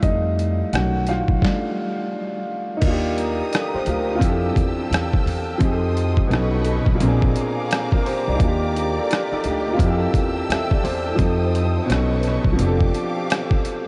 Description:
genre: lo-fi hip hop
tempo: 86 BPM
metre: 4/4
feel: swing 64% on 16ths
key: F major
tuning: A4 = 443 Hz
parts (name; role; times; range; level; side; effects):
- warm upright piano; accompaniment; 0.0-13.9 s; Bb2 to F#5; -25 LUFS; equal; none
- upright bass; bass; 0.0-12.9 s; F1 to F2; -25 LUFS; equal; none
- boom bap sampler-style drum kit; drums; 0.0-13.8 s; crash cymbal, hi-hat, kick drum, rim click, snare drum; -25 LUFS; equal; overdrive
- warm symphonic string section; sustained chords; 2.8-13.9 s; G4 to E6; -32 LUFS; equal; none
room: moderate huge ambient reverb, RT60 7.6 s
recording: dreamy mix soaked in reverb, cassette tape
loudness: -21 LUFS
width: mono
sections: 0.0-2.8 A section; 2.8-13.9 B section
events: upright piano solo 0.0-2.8; stop 1.4-2.8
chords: 0.0 F7; 0.7 B9; 1.4 F69; 2.8 Ebmaj7; 4.2 Fmaj9; 5.6 F7; 6.3 B9; 7.0 Bb7; 8.4 Ebmaj7; 9.8 Fmaj9; 11.2 F7; 11.9 B9; 12.6 F69

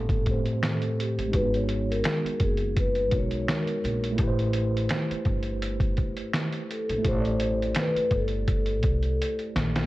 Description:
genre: lo-fi hip hop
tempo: 84 BPM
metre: 4/4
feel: swing 55% on 16ths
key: A dorian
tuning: A4 = 440 Hz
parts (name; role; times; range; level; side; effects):
- vibraphone with soft mallets; melody; 0.0-9.5 s; G4 to C#5; -30 LUFS; left 1 dB; low-pass filter, tape echo
- mellow tine electric piano; accompaniment; 0.0-9.9 s; A2 to D5; -30 LUFS; right 1 dB; medium stereo tremolo, low-pass filter
- upright bass; bass; 0.0-9.9 s; F#1 to C2; -29 LUFS; equal; none
- lo-fi sampler-style drum kit; drums; 0.1-9.9 s; finger snaps, hi-hat, kick drum, snare drum; -28 LUFS; equal; none
room: little or no reverb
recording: cassette tape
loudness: -24 LUFS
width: side -17 dB against mid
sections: 0.0-9.9 A section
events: drum fill 9.2-9.9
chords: 0.0 Am7; 1.3 G#m9; 4.2 Am9

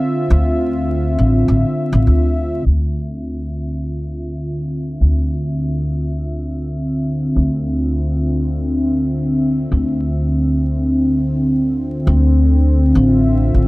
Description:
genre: ambient dub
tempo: 102 BPM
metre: 4/4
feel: straight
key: D minor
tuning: A4 = 440 Hz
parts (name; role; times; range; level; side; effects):
- warm analog pad; sustained chords; 0.0-13.7 s; D3 to E5; -18 LUFS; equal; chorus
- upright bass; bass; 0.3-13.7 s; A1 to D2; -17 LUFS; equal; none
room: moderate spring reverb, RT60 1.5 s, small room ambience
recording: vinyl crackle, low-pass filter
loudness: -15 LUFS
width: side -21 dB against mid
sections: 0.0-2.7 A section; 2.7-12.1 B section; 12.1-13.7 C section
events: filter sweep 2.7-12.1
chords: 0.0 Dm9

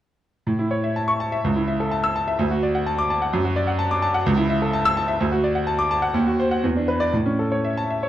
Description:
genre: classical, virtuoso piano study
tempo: 116-130 BPM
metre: 2/4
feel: rubato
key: A major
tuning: A4 = 441 Hz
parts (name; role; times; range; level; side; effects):
- bright grand piano; solo; 0.5-8.1 s; C#2 to E6; -19 LUFS; equal; none
room: moderate recital hall reverb, RT60 1.5 s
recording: dark, warm production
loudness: -19 LUFS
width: side -12 dB against mid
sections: 0.5-8.1 A section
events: none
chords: 0.5 A; 1.4 A/C#; 2.4 D; 3.3 D/F#; 4.3 A/C#; 5.2 D; 6.1 D#m6; 6.6 E5; 7.1 A

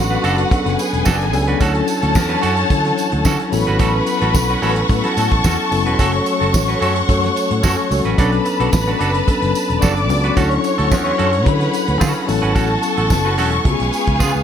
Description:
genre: disco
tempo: 110 BPM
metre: 4/4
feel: straight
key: unclear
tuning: A4 = 440 Hz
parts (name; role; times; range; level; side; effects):
- warm studio string section; second line; 0.0-14.4 s; F#4 to D6; -21 LUFS; left 1 dB; none
- mellow tine electric piano; accompaniment; 0.0-14.4 s; E3 to A4; -21 LUFS; left 4 dB; medium stereo tremolo
- clear studio string section; sustained chords; 0.0-14.4 s; A4 to C#6; -25 LUFS; left 3 dB; none
- fingered electric bass; bass; 0.0-14.4 s; E1 to D3; -20 LUFS; equal; none
- clean electric guitar; accompaniment; 0.1-14.4 s; B3 to B4; -24 LUFS; right 5 dB; spring reverb
- damped 70s drum kit; drums; 0.2-14.3 s; hi-hat, kick drum, snare drum; -20 LUFS; right 1 dB; gated reverb
- tambourine; percussion; 0.2-14.3 s; none; -31 LUFS; right 8 dB; none
room: light reverb, small room ambience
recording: none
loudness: -14 LUFS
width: side -9 dB against mid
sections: 0.0-14.4 A section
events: drum fill 14.2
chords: 0.0 Bm7; 1.6 Dmaj7; 3.5 A6; 6.0 F#m; 8.2 Bm7; 10.4 Dmaj7; 12.3 A6; 13.7 C#7

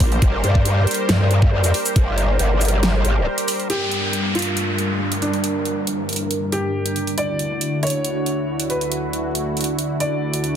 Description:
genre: heavy wobble dubstep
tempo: 138 BPM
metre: 4/4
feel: half-time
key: unclear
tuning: A4 = 440 Hz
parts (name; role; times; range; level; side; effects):
- supersaw pad; sustained chords; 0.0-10.6 s; D2 to C5; -24 LUFS; equal; sidechain pumping, low-pass filter
- dubstep drum kit; drums; 0.0-10.5 s; hi-hat, shaker, snare drum; -24 LUFS; right 1 dB; overdrive
- electronic kick drum; drums; 0.0-2.1 s; none; -16 LUFS; equal; none
- deep dark ambient pad; texture; 0.0-10.6 s; D4 to G5; -28 LUFS; right 2 dB; chorus, built-in reverb, sidechain pumping
- growl bass; bass; 0.2-3.3 s; G1 to G2; -17 LUFS; equal; chorus, overdrive
- felt-muted upright piano; melody; 3.7-10.6 s; D4 to D5; -26 LUFS; equal; dub echo
- downlifter; sound effects; 3.7-7.2 s; none; -26 LUFS; equal; none
room: light reverb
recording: dense, heavily limited modern master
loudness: -18 LUFS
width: side -9 dB against mid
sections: 0.0-3.7 A section; 3.7-10.6 B section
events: drop 0.0-3.7; break 3.3-3.7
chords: 0.0 Gm; 7.2 Dadd9

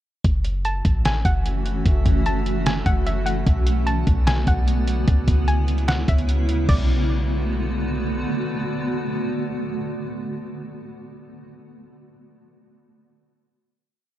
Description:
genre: hip hop, atmospheric cloud-rap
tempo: 149 BPM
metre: 4/4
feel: half-time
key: B dorian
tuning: A4 = 440 Hz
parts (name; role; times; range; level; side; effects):
- granular cloud pad; sustained chords; 1.0-10.7 s; C#3 to F#4; -26 LUFS; right 1 dB; built-in reverb, sidechain pumping
- clean 808-style bass; bass; 0.2-8.3 s; F#1 to D2; -22 LUFS; equal; none
- trip hop sampler-style drum kit; drums; 0.2-6.8 s; crash cymbal, hi-hat, kick drum, snare drum; -21 LUFS; equal; none
- drifting glass-harmonics texture; texture; 1.0-10.7 s; A3 to E5; -36 LUFS; right 1 dB; chorus, built-in reverb
- hollow square pluck; melody; 0.7-7.9 s; D5 to A5; -29 LUFS; equal; chorus, low-pass filter, digital delay
room: little or no reverb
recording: dark, warm production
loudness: -19 LUFS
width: side -13 dB against mid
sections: 0.2-6.7 verse; 6.7-9.9 final chord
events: none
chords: 0.2 F#m7; 3.5 Bm7; 5.1 C#m7; 6.7 Bm7

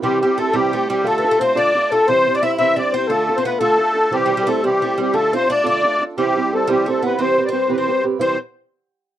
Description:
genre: celtic folk, Celtic jig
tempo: 117 BPM (dotted quarters)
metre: 6/8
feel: straight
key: C major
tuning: A4 = 440 Hz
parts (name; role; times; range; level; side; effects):
- musette accordion; melody; 0.0-8.4 s; G4 to E5; -18 LUFS; left 1 dB; none
- Irish bouzouki; second line; 0.0-8.4 s; G3 to E4; -25 LUFS; right 3 dB; none
- mellow hollow jazz flute; second line; 0.0-8.4 s; G4 to E5; -21 LUFS; left 6 dB; none
- fingerpicked swing-style acoustic guitar; accompaniment; 0.0-8.4 s; C3 to C5; -22 LUFS; right 6 dB; none
room: light reverb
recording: dry, close 1970s-style studio recording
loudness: -15 LUFS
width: side -12 dB against mid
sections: 0.0-8.2 A section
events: none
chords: 0.0 C; 1.1 Dm; 2.1 C; 3.1 Dm; 4.1 C; 5.2 Dm; 6.2 C; 7.2 Cmaj7

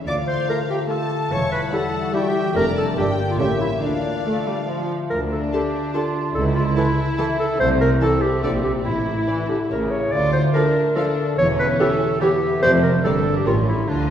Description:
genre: cinematic, playful, whimsical film cue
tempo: 144 BPM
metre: 3/4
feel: straight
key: D minor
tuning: A4 = 439 Hz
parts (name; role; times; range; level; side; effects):
- concert harp; arpeggios; 0.0-14.1 s; E2 to C#6; -28 LUFS; left 3 dB; none
- rich studio cello section; bass; 0.0-14.1 s; C2 to D3; -26 LUFS; right 2 dB; none
- warm studio violin section; melody; 0.1-13.5 s; C#5 to A5; -33 LUFS; left 3 dB; none
- clear clarinet; second line; 0.1-14.1 s; D4 to D5; -22 LUFS; equal; none
- warm studio violin section; second line; 0.1-14.1 s; A3 to D6; -29 LUFS; left 1 dB; none
- warm French horn section; sustained chords; 0.1-4.9 s; G3 to F4; -29 LUFS; left 3 dB; none
- warm studio double bass section; bass; 0.1-14.1 s; E1 to D2; -26 LUFS; right 2 dB; none
- warm studio viola section; accompaniment; 0.5-13.5 s; C#3 to Bb4; -27 LUFS; right 1 dB; none
room: wet scoring stage reverb, RT60 1.6 s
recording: heard from further back in the room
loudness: -18 LUFS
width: side -9 dB against mid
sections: 0.0-5.1 A section; 5.1-14.1 A section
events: none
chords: 0.1 Dm; 1.3 C#dim/E; 2.6 Dm/F; 3.0 Gm; 3.4 A7; 3.8 Dm; 6.4 A/C#; 7.6 Am/C; 8.4 Gm/Bb; 8.9 Asus4; 9.7 A; 10.1 Dm; 11.4 C#dim/E; 12.6 Dm/F; 13.0 Gm; 13.5 A7b9

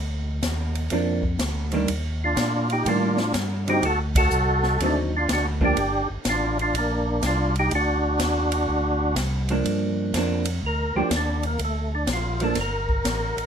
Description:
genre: soul jazz organ trio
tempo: 124 BPM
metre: 4/4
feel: swing 67% on 8ths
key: G minor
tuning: A4 = 440 Hz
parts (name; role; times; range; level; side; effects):
- tonewheel organ; bass; 0.0-13.5 s; G1 to Bb2; -26 LUFS; equal; overdrive, slow rotary speaker
- swinging big-band drum kit; drums; 0.4-13.5 s; hi-hat, kick drum, ride cymbal, snare drum; -29 LUFS; equal; none
- vintage hollow-body jazz guitar; accompaniment; 0.9-5.8, 9.5-12.6 s; D3 to Eb4; -25 LUFS; right 3 dB; none
- overdriven tonewheel organ; melody; 2.2-13.5 s; A3 to Bb4; -24 LUFS; equal; chorus vibrato, stopped rotary speaker
room: moderate small room reverb, RT60 0.6 s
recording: minimal, uncompressed stereo recording, lossy compression artefacts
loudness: -21 LUFS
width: side -7 dB against mid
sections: 0.0-9.7 A section; 9.7-13.5 B section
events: band accent 4.1; tonewheel organ solo 9.7-13.5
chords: 0.0 Gm7 (rootless); 1.9 Ebmaj7; 3.8 D7b9; 5.8 Gm; 7.7 D7b9; 9.7 Gm7

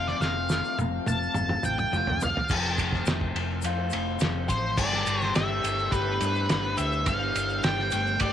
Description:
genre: psychedelic rock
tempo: 105 BPM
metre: 4/4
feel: straight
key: G mixolydian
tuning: A4 = 440 Hz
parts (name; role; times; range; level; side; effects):
- octave-fuzz lead guitar; melody; 0.0-8.3 s; B4 to A5; -29 LUFS; equal; distortion, tape echo
- soft string machine; sustained chords; 0.0-8.3 s; F3 to A4; -39 LUFS; right 17 dB; ensemble chorus
- electric guitar through a small old amp; riff; 0.0-8.3 s; F3 to B4; -33 LUFS; left 12 dB; phaser
- hollow-body short-scale fingered electric bass; bass; 0.0-8.3 s; F1 to G2; -31 LUFS; right 1 dB; none
- cloth-damped thuddy drum kit; drums; 0.1-8.3 s; crash cymbal, kick drum, ride cymbal, snare drum, toms; -28 LUFS; right 1 dB; none
- tube shaker; percussion; 0.2-8.3 s; none; -43 LUFS; left 14 dB; none
room: light reverb, studio ambience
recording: 1960s-style stereo with parts hard left and right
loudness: -24 LUFS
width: side -10 dB against mid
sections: 0.0-2.5 A section; 2.5-4.8 B section; 4.8-8.3 C section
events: lead electric guitar solo 0.0-2.5; drum fill 0.2-2.5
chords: 0.0 F; 4.8 Gadd9

